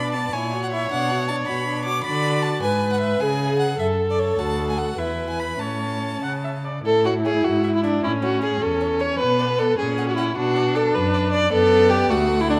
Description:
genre	quick classical-period movement for string quartet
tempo	103 BPM (dotted quarters)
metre	6/8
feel	rubato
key	A major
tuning	A4 = 444 Hz
part	clear violin	melody	0.0-12.6 s	C#5 to D6	-32 LUFS	equal	none
part	rich violin	second line	0.0-12.6 s	B3 to D5	-25 LUFS	equal	none
part	rich viola	accompaniment	0.0-12.6 s	A3 to F#5	-27 LUFS	equal	none
part	rich cello	bass	0.0-12.6 s	D2 to D3	-29 LUFS	equal	none
room	moderate concert hall reverb, RT60 1.6 s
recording	none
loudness	-21 LUFS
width	mono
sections	0.0-6.8 A section; 6.8-12.6 A section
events	none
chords	0.3 F#7/A#; 0.9 Bm; 2.0 D; 2.6 G#m; 3.2 C#5; 3.8 F#m; 4.4 D; 5.0 E5; 5.6 A; 7.4 E/G#; 8.0 A; 9.2 Bm; 9.8 F#/A#; 10.4 Bm; 11.5 D/F#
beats	0.32 | 0.90 1.48 | 2.05 2.63 | 3.21 3.80 | 4.39 4.98 | 5.60 6.22 | 6.85 7.44 | 8.03 8.61 | 9.20 9.79 | 10.38 10.95 | 11.53 12.10

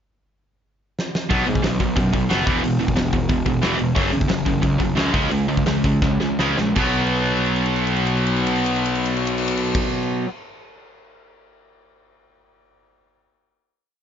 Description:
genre	punk rock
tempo	155-182 BPM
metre	4/4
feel	straight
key	unclear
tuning	A4 = 443 Hz
part	big rock drum kit	drums	1.0-11.3 s	crash cymbal, hi-hat, kick drum, ride cymbal, snare drum	-24 LUFS	equal	none
part	distorted electric guitar	riff	1.3-10.3 s	E2 to C#4	-20 LUFS	equal	overdrive
part	fuzz picked electric bass	bass	1.3-9.8 s	E1 to G#2	-25 LUFS	equal	overdrive
room	little or no reverb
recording	nothing above 7.5 kHz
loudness	-18 LUFS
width	side -8 dB against mid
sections	0.0-1.3 pickup bar; 1.3-6.8 verse; 6.8-9.8 final chord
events	drum fill 1.0-1.3, 6.0-6.8, 7.0-9.7; slowing down 4.0-6.8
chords	0.0 N.C.; 1.3 B5; 2.5 E5; 4.0 F#5; 5.1 C#5; 6.8 B5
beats	0.32 0.65 0.98 | 1.31 1.64 1.97 2.30 | 2.63 2.96 3.30 3.63 | 3.96 4.29 4.62 4.96 | 5.30 5.66 6.01 6.38 | 6.76 7.15 7.54 7.92 | 8.30 8.69 9.07 9.46

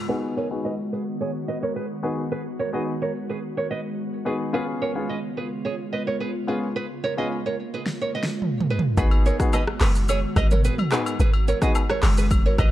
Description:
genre	afrobeats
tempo	108 BPM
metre	4/4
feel	straight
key	G# dorian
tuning	A4 = 441 Hz
part	glassy FM pad	sustained chords	0.0-12.7 s	C#3 to F#4	-30 LUFS	equal	ensemble chorus, built-in reverb, sidechain pumping, low-pass filter
part	warm baby grand piano	accompaniment	0.1-11.8 s	B3 to G#4	-28 LUFS	left 3 dB	low-pass filter
part	nylon-string guitar	riff	0.1-12.7 s	G#4 to D#5	-29 LUFS	right 3 dB	low-pass filter, digital delay
part	deep house drum kit	drums	7.9-12.7 s	handclaps, hi-hat, kick drum, rim click, shaker, snare drum, toms	-23 LUFS	equal	overdrive
part	deep log drum bass	bass	9.0-12.7 s	F#1 to G#1	-20 LUFS	equal	none
part	agogo bells and woodblock	percussion	9.1-12.7 s	none	-34 LUFS	left 6 dB	none
room	studio reverb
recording	dark, warm production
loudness	-22 LUFS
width	side -14 dB against mid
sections	0.1-9.0 A section; 9.0-12.7 B section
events	filter sweep 0.1-9.0; drum fill 7.9-9.0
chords	0.1 G#m7; 4.5 C#7; 9.0 G#m7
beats	| 0.09 0.64 1.20 1.75 | 2.31 2.86 3.42 3.98 | 4.53 5.09 5.64 6.20 | 6.75 7.31 7.86 8.42 | 8.97 9.53 10.09 10.64 | 11.20 11.75 12.31

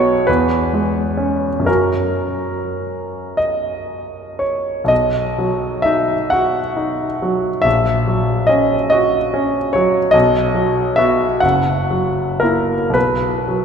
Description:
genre	classical, romantic nocturne for solo piano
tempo	34-49 BPM (dotted quarters)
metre	6/8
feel	rubato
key	B major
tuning	A4 = 440 Hz
part	clear concert grand piano	solo	0.0-13.6 s	F#1 to F#5	-15 LUFS	equal	none
room	wet church reverb, RT60 3.9 s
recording	recorded in a church or concert hall, nothing above 10.3 kHz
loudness	-15 LUFS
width	side -6 dB against mid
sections	0.0-13.6 A section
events	none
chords	0.3 C#m/E; 1.7 F#; 4.9 B; 7.7 F#7/A#; 10.1 B; 11.4 F#7; 12.9 B5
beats	0.28 | 1.67 3.38 | 4.91 6.31 | 7.65 8.91 | 10.14 11.43 | 12.95

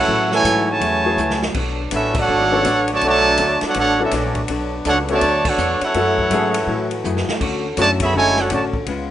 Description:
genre	jazz, big band swing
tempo	164 BPM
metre	4/4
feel	swing 63% on 8ths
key	unclear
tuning	A4 = 440 Hz
part	clear trumpet section	melody	0.0-8.6 s	A3 to B5	-17 LUFS	right 2 dB	plate reverb
part	warm trombone section	second line	0.0-8.6 s	C#3 to A4	-24 LUFS	right 3 dB	none
part	bright trombone section	sustained chords	0.0-9.1 s	C#3 to A4	-27 LUFS	left 1 dB	none
part	upright bass	bass	0.0-9.1 s	F#1 to A2	-26 LUFS	equal	none
part	vintage hollow-body jazz guitar	accompaniment	0.1-9.1 s	C#3 to C#5	-26 LUFS	left 5 dB	none
part	swinging big-band drum kit	drums	0.3-9.0 s	crash cymbal, hi-hat, kick drum, ride cymbal, snare drum	-27 LUFS	equal	none
part	warm upright piano	accompaniment	1.0-8.0 s	F#3 to A4	-23 LUFS	left 6 dB	none
room	moderate studio reverb, RT60 0.6 s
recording	rough home demo mix, nothing above 10.6 kHz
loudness	-15 LUFS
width	side -12 dB against mid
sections	0.0-9.1 A section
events	drum fill 1.2-1.6, 7.0-7.4; band accent 2.1, 5.4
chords	0.0 F#m9; 1.6 Bm9; 6.0 F#m9; 7.4 Dmaj7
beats	| 0.09 0.45 0.82 1.19 | 1.56 1.92 2.29 2.66 | 3.02 3.39 3.76 4.12 | 4.49 4.86 5.22 5.59 | 5.95 6.32 6.68 7.05 | 7.41 7.78 8.14 8.51 | 8.87

